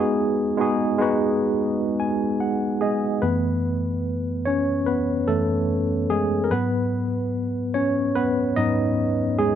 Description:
R&B; 73 BPM; 4/4; swing 59% on 16ths; F# dorian; A4 = 440 Hz
tine electric piano; solo; 0.0-9.6 s; F#2 to G#5; -20 LUFS; equal; medium stereo tremolo
light reverb; -20 LUFS; side -9 dB against mid
0.0-3.2 A section; 3.2-9.6 A section
tine electric piano fill 1.6-3.2; tine electric piano solo 3.2-9.6
0.0 G#m7; 3.2 F#m11; 6.5 G#m7
0.76 1.58 2.40 | 3.22 4.04 4.87 5.69 | 6.51 7.33 8.15 8.98

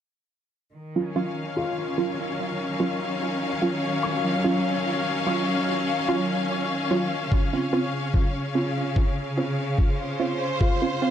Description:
ambient dub; 73 BPM; 4/4; straight; Eb dorian; A4 = 441 Hz
rich studio string section; sustained chords; 0.7-11.1 s; Db3 to F5; -26 LUFS; left 1 dB
filtered dub chord stab; stabs; 1.0-11.1 s; Gb3 to F4; -28 LUFS; right 3 dB; chorus, cassette tape, dub echo
felt-muted upright piano; arpeggios; 1.6-11.1 s; F4 to Db6; -34 LUFS; left 3 dB; low-pass filter, dub echo
electronic kick drum; drums; 7.3-10.8 s; -22 LUFS; equal
moderate concert hall reverb, RT60 2.4 s; -23 LUFS; side -10 dB against mid
0.7-11.1 A section
filter sweep on synth stab 0.7-11.1; filter sweep on felt piano 0.7-11.1
0.7 Ebm9; 7.3 Dbmaj7
| 0.74 1.57 2.39 3.21 | 4.03 4.85 5.67 6.50 | 7.32 8.14 8.96 9.79 | 10.61

